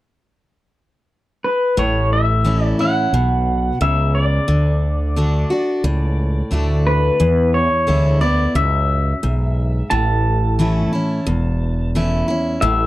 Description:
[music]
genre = honky-tonk and classic country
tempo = 88 BPM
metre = 4/4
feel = straight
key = A major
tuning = A4 = 440 Hz
[part]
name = pedal steel guitar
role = melody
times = 1.4-12.9 s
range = B4 to A5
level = -20 LUFS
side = left 1 dB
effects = none
[part]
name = picked steel-string acoustic guitar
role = accompaniment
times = 1.8-12.9 s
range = E2 to F#4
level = -20 LUFS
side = equal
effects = none
[part]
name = fretless electric bass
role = bass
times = 1.8-12.9 s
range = E1 to E2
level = -18 LUFS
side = equal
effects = none
[sound]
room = small room ambience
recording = dry, close 1970s-style studio recording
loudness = -15 LUFS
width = side -16 dB against mid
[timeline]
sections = 0.0-1.8 A section; 1.8-12.6 B section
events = none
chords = 0.0 N.C.; 1.8 A; 4.5 D; 7.2 E7; 9.9 A

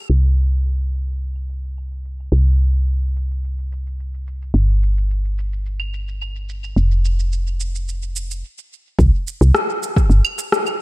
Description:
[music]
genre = organic downtempo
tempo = 108 BPM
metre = 4/4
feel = straight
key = unclear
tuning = A4 = 440 Hz
[part]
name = woody FM bass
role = bass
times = 0.1-10.2 s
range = F1 to C2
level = -17 LUFS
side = equal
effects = sidechain pumping
[part]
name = electronic shaker, claves and rim click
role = drums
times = 0.1-10.8 s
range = none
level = -22 LUFS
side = equal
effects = tape echo
[part]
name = electronic kick drum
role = drums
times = 9.0-10.1 s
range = none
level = -16 LUFS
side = equal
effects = none
[sound]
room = little or no reverb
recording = echo-heavy mix, low-pass filter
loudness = -17 LUFS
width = side -18 dB against mid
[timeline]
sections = 0.1-9.0 A section; 9.0-10.8 B section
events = filter sweep 0.1-9.0; stop 8.4-9.0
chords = none

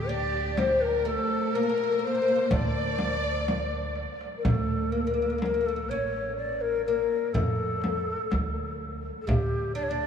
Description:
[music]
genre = Arabic maqam ensemble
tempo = 124 BPM (eighths)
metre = 10/8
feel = straight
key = D maqam hijaz, D maqam nahawand from 4.5 s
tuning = A4 = 442 Hz
[part]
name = breathy mellow ney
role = melody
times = 0.0-10.1 s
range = G4 to D5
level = -28 LUFS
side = left 4 dB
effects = none
[part]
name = oud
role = second line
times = 0.0-10.1 s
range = G3 to D4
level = -34 LUFS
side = right 4 dB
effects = none
[part]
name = rich symphonic violin section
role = second line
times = 0.0-4.0 s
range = G4 to D5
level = -35 LUFS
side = equal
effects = none
[part]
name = upright bass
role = bass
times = 0.0-10.1 s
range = A1 to F2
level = -32 LUFS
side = right 1 dB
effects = none
[part]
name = darbuka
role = percussion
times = 0.1-9.5 s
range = none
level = -35 LUFS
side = right 2 dB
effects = none
[part]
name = frame drum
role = percussion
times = 0.6-9.5 s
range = none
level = -33 LUFS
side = left 1 dB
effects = none
[sound]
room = wet cathedral reverb, RT60 6.5 s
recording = in a vast, echoing space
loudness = -25 LUFS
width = side -7 dB against mid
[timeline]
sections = 0.0-4.5 A section; 4.5-10.1 B section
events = drum fill 3.5-4.5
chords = none

